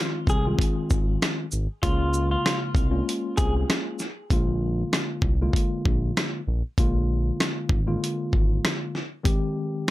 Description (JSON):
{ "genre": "hip hop, boom-bap hip-hop", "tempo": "97 BPM", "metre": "4/4", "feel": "swing 58% on 16ths", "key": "unclear", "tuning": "A4 = 440 Hz", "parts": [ { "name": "mellow tine electric piano", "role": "accompaniment", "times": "0.0-9.9 s", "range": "Db3 to G4", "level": "-28 LUFS", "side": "left 2 dB", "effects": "fast stereo tremolo, cassette tape, high-pass filter, low-pass filter" }, { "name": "dusty soul sampler-style drum kit", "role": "drums", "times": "0.0-9.9 s", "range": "hi-hat, kick drum, rim click, shaker, snare drum", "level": "-24 LUFS", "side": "equal", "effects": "none" }, { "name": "clean electric guitar", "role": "melody", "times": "0.3-3.5 s", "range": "F4 to Ab4", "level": "-30 LUFS", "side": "left 1 dB", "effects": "spring reverb, high-pass filter, low-pass filter, tape echo" }, { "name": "smooth synth bass", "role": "bass", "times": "0.3-8.6 s", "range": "Ab1 to Db2", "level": "-25 LUFS", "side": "equal", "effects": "none" } ], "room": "light reverb", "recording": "none", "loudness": "-22 LUFS", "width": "side -16 dB against mid", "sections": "0.0-4.3 A section; 4.3-9.9 B section", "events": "none", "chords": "0.0 Ab6; 1.8 Db6; 4.3 Bb7; 9.3 Abmaj7" }